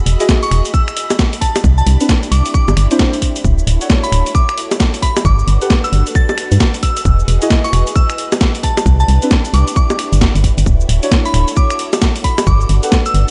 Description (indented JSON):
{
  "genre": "UK garage, two-step garage",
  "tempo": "133 BPM",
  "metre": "4/4",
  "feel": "swing 62% on 16ths",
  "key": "D major",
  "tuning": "A4 = 442 Hz",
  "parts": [
    { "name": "soft string machine", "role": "sustained chords", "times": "0.0-13.3 s", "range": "B3 to B5", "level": "-30 LUFS", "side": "equal", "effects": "ensemble chorus, sidechain pumping" },
    { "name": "organ-like FM bass", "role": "bass", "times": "0.1-13.2 s", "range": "D1 to G2", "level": "-14 LUFS", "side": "equal", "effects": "tube saturation" },
    { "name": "breakbeat sampler-style drum kit", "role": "drums", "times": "0.1-13.3 s", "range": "bongos, cabasa, finger snaps, hi-hat, snare drum", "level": "-20 LUFS", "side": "equal", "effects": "small room reverb" },
    { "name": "deep mellow chord stab", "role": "stabs", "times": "0.2-12.9 s", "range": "C4 to F#5", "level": "-23 LUFS", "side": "equal", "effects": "chorus, delay" },
    { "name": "electronic kick drum", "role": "drums", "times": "0.3-13.0 s", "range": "none", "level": "-16 LUFS", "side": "equal", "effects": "small room reverb" },
    { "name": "glassy synth bell", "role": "melody", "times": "0.4-13.2 s", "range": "A5 to A6", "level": "-24 LUFS", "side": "equal", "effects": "chorus, delay" }
  ],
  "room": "light reverb, digital ambience",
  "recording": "nothing above 10.3 kHz",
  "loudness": "-14 LUFS",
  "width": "mono",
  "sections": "0.0-13.3 A section",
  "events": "none",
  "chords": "0.0 Emaj9; 1.4 Cmaj9; 3.4 Dmaj9; 5.2 Gmaj9; 6.8 Emaj9; 8.6 Cmaj9; 10.7 Dmaj9; 12.5 Gmaj9"
}